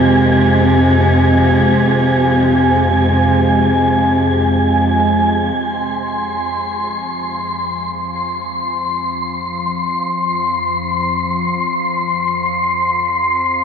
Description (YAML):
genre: dark ambient drone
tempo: free time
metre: none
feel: none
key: unclear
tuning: A4 = 440 Hz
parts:
  - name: rich cello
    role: melody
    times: 0.0-4.5 s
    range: C3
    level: -16 LUFS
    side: equal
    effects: shimmer reverb, diffuse ambient delay
  - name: gamelan-type bronze metallophone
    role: arpeggios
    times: 0.0-1.5 s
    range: none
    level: barely audible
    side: none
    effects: none
  - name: organ-like drone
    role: drone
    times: 0.0-13.6 s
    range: F2 to Ab3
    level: -18 LUFS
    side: equal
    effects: ensemble chorus, built-in reverb
  - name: wind-like tuned noise texture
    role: texture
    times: 0.0-13.6 s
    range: Ab5 to C6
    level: -17 LUFS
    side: equal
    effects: built-in reverb, shimmer reverb
room: wet huge ambient reverb, RT60 7.7 s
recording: worn, warbling old tape, cassette tape, warbly pitch drift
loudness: -13 LUFS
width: side -7 dB against mid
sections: 0.0-5.6 A section; 5.6-13.6 B section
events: fade-in on synth drone 5.6-13.6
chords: 0.0 Ab/F; 5.6 F5